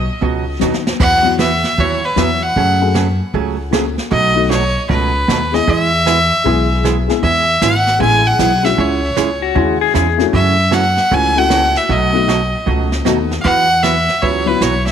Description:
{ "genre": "country, western swing", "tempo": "154 BPM", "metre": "4/4", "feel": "swing 64% on 8ths", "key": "E major", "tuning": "A4 = 444 Hz", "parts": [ { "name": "upright bass", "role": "bass", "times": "0.0-14.9 s", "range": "G#1 to F#2", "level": "-18 LUFS", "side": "equal", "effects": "none" }, { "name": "hollow-body jazz guitar", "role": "accompaniment", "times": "0.2-14.7 s", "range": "B2 to B4", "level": "-20 LUFS", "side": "right 11 dB", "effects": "none" }, { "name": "jazz brush drum kit", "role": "drums", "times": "0.2-14.9 s", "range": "brushed snare drum, crash cymbal, hi-hat, kick drum, snare drum", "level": "-23 LUFS", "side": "equal", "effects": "none" }, { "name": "honky-tonk upright piano", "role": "accompaniment", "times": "0.6-14.9 s", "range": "F#3 to G#4", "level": "-20 LUFS", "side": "left 12 dB", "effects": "none" }, { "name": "clear fiddle", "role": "melody", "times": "1.0-14.9 s", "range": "B4 to G#5", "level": "-15 LUFS", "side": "equal", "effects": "tape echo" }, { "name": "clean lap steel guitar", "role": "second line", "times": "9.4-10.3 s", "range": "F#4 to G#4", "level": "-17 LUFS", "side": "left 13 dB", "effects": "none" } ], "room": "light reverb, small room ambience", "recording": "1960s-style stereo with parts hard left and right", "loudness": "-12 LUFS", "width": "side -8 dB against mid", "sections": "0.0-14.9 A section", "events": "drum fill 0.6-1.0", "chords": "0.0 B; 1.0 Esus2; 2.6 F#madd9; 4.1 B7; 5.7 E; 8.8 C#m; 10.3 F#m7; 11.9 B7; 13.4 Esus2", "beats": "0.22 0.61 | 1.00 1.39 1.78 2.17 | 2.56 2.95 3.34 3.73 | 4.12 4.51 4.89 5.28 | 5.67 6.06 6.45 6.84 | 7.23 7.62 8.00 8.39 | 8.78 9.17 9.56 9.95 | 10.34 10.72 11.11 11.50 | 11.89 12.28 12.67 13.06 | 13.45 13.84 14.22 14.61" }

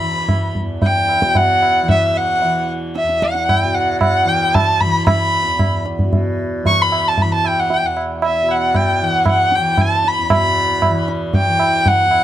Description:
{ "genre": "indian classical, Hindustani", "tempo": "114 BPM", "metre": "5/4", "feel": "straight", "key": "E raga kafi", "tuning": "A4 = 440 Hz", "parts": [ { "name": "rich violin", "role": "melody", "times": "0.0-12.2 s", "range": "E5 to C#6", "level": "-16 LUFS", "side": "equal", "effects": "none" }, { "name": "tanpura", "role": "drone", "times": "0.0-12.2 s", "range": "E2 to E3", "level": "-23 LUFS", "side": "equal", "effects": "stereo widening" }, { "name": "tabla", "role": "percussion", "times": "0.3-12.2 s", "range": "none", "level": "-18 LUFS", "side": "right 1 dB", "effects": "none" } ], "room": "small room ambience", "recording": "dry, close 1970s-style studio recording", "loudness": "-14 LUFS", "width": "side -12 dB against mid", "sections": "0.0-10.3 A section; 10.3-12.2 B section", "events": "speeding up 0.0-12.2", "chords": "none", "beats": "0.29 0.83 1.36 1.89 | 2.43 2.96 3.49 4.02 4.55 | 5.07 5.60 6.13 6.65 7.18 | 7.70 8.22 8.74 9.27 9.79 | 10.30 10.82 11.34 11.86" }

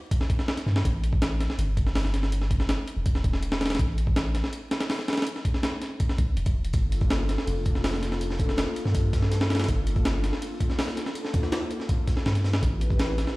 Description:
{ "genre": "drum and bass, jungle", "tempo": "163 BPM", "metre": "4/4", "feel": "straight", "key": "G dorian", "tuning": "A4 = 440 Hz", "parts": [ { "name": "breakbeat sampler-style drum kit", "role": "drums", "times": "0.1-13.4 s", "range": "hi-hat, kick drum, snare drum", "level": "-26 LUFS", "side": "equal", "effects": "small room ambience" }, { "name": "long sustained 808-style bass", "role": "bass", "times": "0.7-13.3 s", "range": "E1 to G2", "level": "-26 LUFS", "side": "equal", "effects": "none" }, { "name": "airy breathy pad", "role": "sustained chords", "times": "6.7-13.4 s", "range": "Bb3 to B4", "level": "-33 LUFS", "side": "left 1 dB", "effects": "chorus" }, { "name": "crunchy breakbeat drum kit", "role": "drums", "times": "6.7-13.3 s", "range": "hi-hat, snare drum", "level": "-42 LUFS", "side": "right 3 dB", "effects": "high-pass filter on hats, small room ambience, high-pass filter on snare, high-pass filter on room" } ], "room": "studio reverb", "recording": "played on a big sound system in a bare room, stone room reverb, vinyl crackle", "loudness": "-23 LUFS", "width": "side -21 dB against mid", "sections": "0.0-13.4 A section", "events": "none", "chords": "0.0 N.C.; 0.8 A7(no3); 6.7 Gm7; 12.6 Am7", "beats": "0.11 0.48 | 0.85 1.22 1.58 1.95 | 2.32 2.69 3.06 3.43 | 3.79 4.16 4.53 4.90 | 5.27 5.63 6.00 6.37 | 6.74 7.11 7.47 7.84 | 8.21 8.58 8.95 9.31 | 9.68 10.05 10.42 10.79 | 11.16 11.52 11.89 12.26 | 12.63 13.00 13.37" }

